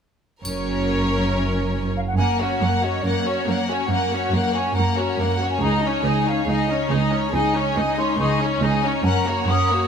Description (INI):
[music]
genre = cinematic, heroic adventure film score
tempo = 140 BPM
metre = 4/4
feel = straight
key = Gb major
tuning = A4 = 440 Hz
[part]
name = clear symphonic violin section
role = melody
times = 0.4-9.9 s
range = Db5 to Gb5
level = -27 LUFS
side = left 2 dB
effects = none
[part]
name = rich symphonic cello section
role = bass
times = 0.4-9.8 s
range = Db2 to Gb2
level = -23 LUFS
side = right 3 dB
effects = none
[part]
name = rich symphonic double bass section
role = bass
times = 0.4-1.9 s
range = Gb1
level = -29 LUFS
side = right 1 dB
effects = none
[part]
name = warm symphonic violin section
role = second line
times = 0.5-9.9 s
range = Eb4 to Bb4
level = -27 LUFS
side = left 5 dB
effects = none
[part]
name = clear symphonic viola section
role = accompaniment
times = 0.5-9.9 s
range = Bb3 to Eb4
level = -26 LUFS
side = left 2 dB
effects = none
[part]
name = triangle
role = percussion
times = 0.5-1.3 s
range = none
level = -36 LUFS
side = equal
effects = none
[part]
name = hollow small flute group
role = second line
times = 2.0-9.9 s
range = Db5 to Eb6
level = -26 LUFS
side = equal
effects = none
[sound]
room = moderate scoring stage reverb, RT60 1.6 s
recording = none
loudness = -19 LUFS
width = side -7 dB against mid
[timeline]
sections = 0.5-2.2 A section; 2.2-9.9 B section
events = none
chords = 0.5 Gb; 5.6 Dbsus2; 9.1 Gb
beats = | 0.45 0.89 1.31 1.74 | 2.18 2.62 3.05 3.48 | 3.91 4.34 4.77 5.20 | 5.62 6.05 6.49 6.91 | 7.34 7.77 8.20 8.62 | 9.05 9.48